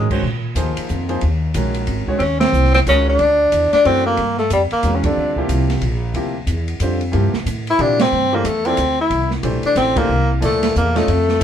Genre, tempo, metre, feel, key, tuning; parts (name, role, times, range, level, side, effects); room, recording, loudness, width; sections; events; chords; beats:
modal jazz; 182 BPM; 3/4; swing 62% on 8ths; Eb dorian, G dorian from 4.2 s; A4 = 441 Hz
warm tenor saxophone; melody; 0.0-0.1, 2.2-5.4, 7.7-11.4 s; G3 to E4; -16 LUFS; left 1 dB
clear concert grand piano; accompaniment; 0.0-11.4 s; Bb2 to Eb5; -23 LUFS; equal
upright bass; bass; 0.0-11.4 s; Ab1 to Bb2; -20 LUFS; equal
open jazz drum kit; drums; 0.1-11.4 s; crash cymbal, hi-hat, kick drum, ride cymbal, snare drum; -26 LUFS; right 3 dB
light reverb; band playing live in one room; -15 LUFS; side -9 dB against mid
0.0-4.2 A section; 4.2-11.4 B section
band accent 2.4, 5.0, 8.0, 9.9
0.2 Ebm11; 2.2 Absus4; 3.2 D7; 4.2 Gm9; 8.1 Am7
| 0.23 0.56 0.89 | 1.22 1.54 1.87 | 2.20 2.53 2.86 | 3.19 3.52 3.85 | 4.18 4.50 4.83 | 5.16 5.49 5.82 | 6.15 6.48 6.81 | 7.14 7.46 7.79 | 8.12 8.45 8.78 | 9.11 9.44 9.77 | 10.09 10.42 10.75 | 11.08 11.41